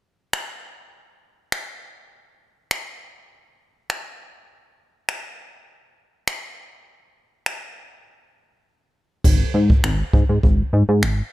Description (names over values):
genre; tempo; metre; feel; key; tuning
dance-pop; 101 BPM; 4/4; straight; unclear; A4 = 440 Hz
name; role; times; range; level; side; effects
jazz brush drum kit; drums; 0.3-11.2 s; crash cymbal, finger snaps, kick drum; -20 LUFS; equal; none
chorused synth bass; bass; 9.2-11.2 s; Ab1 to Ab2; -17 LUFS; equal; sidechain pumping
room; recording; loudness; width
little or no reverb; none; -18 LUFS; side -17 dB against mid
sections
0.0-9.2 A section; 9.2-11.3 B section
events
none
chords
none